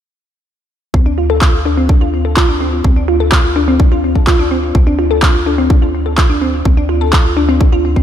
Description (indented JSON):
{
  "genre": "progressive house",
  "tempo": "126 BPM",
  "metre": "4/4",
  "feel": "straight",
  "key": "D minor",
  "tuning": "A4 = 440 Hz",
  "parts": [
    { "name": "glassy wavetable pluck", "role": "arpeggios", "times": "0.9-8.0 s", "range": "C4 to A4", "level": "-15 LUFS", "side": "left 1 dB", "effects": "chorus, sidechain pumping, ping-pong delay" },
    { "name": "tight sequencer bass", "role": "bass", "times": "0.9-8.0 s", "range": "D2", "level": "-17 LUFS", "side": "equal", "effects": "sidechain pumping" },
    { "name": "electronic kick drum", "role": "drums", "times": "0.9-8.0 s", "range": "none", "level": "-11 LUFS", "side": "equal", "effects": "none" },
    { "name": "electronic handclaps", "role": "drums", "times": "1.4-7.2 s", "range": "none", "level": "-19 LUFS", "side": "equal", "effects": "overdrive" }
  ],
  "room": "light reverb",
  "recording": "none",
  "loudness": "-10 LUFS",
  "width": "side -10 dB against mid",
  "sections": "0.9-8.0 A section",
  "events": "none",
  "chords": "none"
}